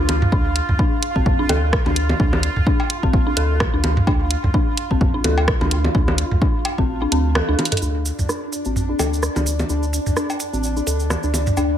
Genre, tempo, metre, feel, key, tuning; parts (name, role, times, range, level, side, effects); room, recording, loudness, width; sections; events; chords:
minimal techno; 128 BPM; 4/4; swing 56% on 16ths; D minor; A4 = 440 Hz
rubbery square bass; bass; 0.0-11.8 s; A1 to D2; -21 LUFS; equal; sidechain pumping
bubbling stepped-filter texture; texture; 0.0-11.8 s; D4 to F4; -28 LUFS; right 1 dB; chorus, built-in reverb, sidechain pumping
garage drum kit; drums; 0.1-11.4 s; hi-hat, rim click; -24 LUFS; right 1 dB; overdrive, low-pass filter on hats, low-pass filter on snare
electronic bongos, toms and cowbell; percussion; 0.1-11.7 s; -24 LUFS; equal; dub echo
dark detuned synth bell; riff; 0.3-11.6 s; C4 to A4; -24 LUFS; left 1 dB; chorus, sidechain pumping, low-pass filter, tape echo
electronic kick drum; drums; 0.3-6.9 s; -20 LUFS; equal
cabasa; percussion; 7.8-11.7 s; -30 LUFS; right 4 dB
light reverb; -17 LUFS; side -10 dB against mid
0.0-7.8 A section; 7.8-11.8 B section
kick drops out 6.9-7.8; drum fill 7.6; filter sweep on drum 7.8-11.8
0.0 D5